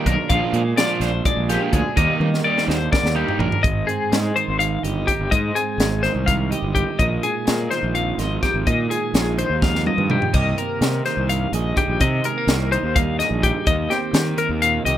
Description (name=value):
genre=math rock and midwest emo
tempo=251 BPM (eighths)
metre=7/8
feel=straight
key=unclear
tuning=A4 = 442 Hz
part: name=twelve-string electric guitar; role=accompaniment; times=0.0-15.0 s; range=Eb2 to Ab4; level=-27 LUFS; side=right 11 dB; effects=none
part: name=twelve-string electric guitar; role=arpeggios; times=0.0-15.0 s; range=G4 to F5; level=-22 LUFS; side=left 5 dB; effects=tremolo
part: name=crunchy overdriven guitar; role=riff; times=0.0-3.5 s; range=Eb3 to F4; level=-24 LUFS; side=right 4 dB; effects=none
part: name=fuzz fingered electric bass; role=bass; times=0.1-15.0 s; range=G1 to Eb3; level=-23 LUFS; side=equal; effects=overdrive
part: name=crisp fusion drum kit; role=drums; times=0.1-15.0 s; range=hi-hat, kick drum, snare drum, splash cymbal, toms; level=-22 LUFS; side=equal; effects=none
room=little or no reverb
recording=rough home demo mix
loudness=-18 LUFS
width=side -11 dB against mid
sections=0.0-3.6 A section; 3.6-15.0 B section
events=drum fill 2.2-3.6, 9.6-10.3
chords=0.3 Bb7; 2.0 Ebmaj7; 3.6 Abmaj7; 7.0 Bb7sus4; 10.3 Cm7; 13.7 Eb6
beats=0.06 | 0.30 0.54 0.78 1.02 1.25 1.49 1.73 | 1.97 2.21 2.45 2.69 2.93 3.17 3.40 | 3.64 3.88 4.12 4.36 4.60 4.84 5.08 | 5.32 5.56 5.80 6.04 6.28 6.51 6.75 | 6.99 7.23 7.47 7.71 7.95 8.19 8.43 | 8.67 8.90 9.14 9.38 9.62 9.86 10.10 | 10.34 10.58 10.81 11.05 11.29 11.53 11.77 | 12.01 12.24 12.48 12.72 12.96 13.20 13.44 | 13.67 13.91 14.15 14.39 14.62 14.86